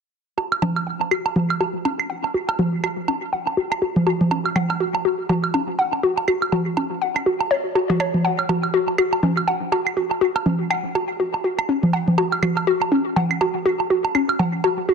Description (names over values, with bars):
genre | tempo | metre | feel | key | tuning
minimal techno | 122 BPM | 4/4 | swing 58% on 16ths | unclear | A4 = 440 Hz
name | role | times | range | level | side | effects
hollow square pluck | riff | 0.4-14.9 s | C#4 to F#5 | -22 LUFS | left 2 dB | chorus, dub echo
woodblock and congas | percussion | 0.4-14.8 s | none | -21 LUFS | right 3 dB | dub echo
room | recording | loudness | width
moderate plate reverb, RT60 1.6 s, digital ambience | dense, heavily limited modern master | -19 LUFS | side -6 dB against mid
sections
0.4-14.9 A section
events
filter sweep on synth arpeggio sound 0.4-14.9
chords
none